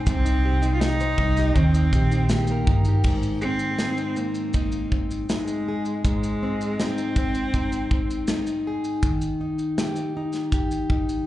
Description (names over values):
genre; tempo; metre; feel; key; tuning
acoustic pop; 80 BPM; 4/4; straight; Ab major; A4 = 440 Hz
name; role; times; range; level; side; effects
rich cello; melody; 0.0-8.3 s; Ab3 to F4; -27 LUFS; right 1 dB; tape echo
fingerpicked plugged-in steel-string acoustic guitar; accompaniment; 0.0-11.3 s; Ab2 to C5; -26 LUFS; left 1 dB; slapback echo
vintage muted fingered electric bass; bass; 0.0-3.0 s; G1 to Eb2; -21 LUFS; equal; none
modern studio drum kit; drums; 0.1-11.3 s; crash cymbal, kick drum, shaker, snare drum; -25 LUFS; equal; none
room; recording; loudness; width
little or no reverb; live gig heard through the venue's PA, club reverb, nothing above 10.6 kHz; -21 LUFS; side -15 dB against mid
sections
0.0-3.1 A section; 3.1-11.3 B section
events
none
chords
0.1 Cm; 1.6 Eb; 3.1 Ab; 9.0 Eb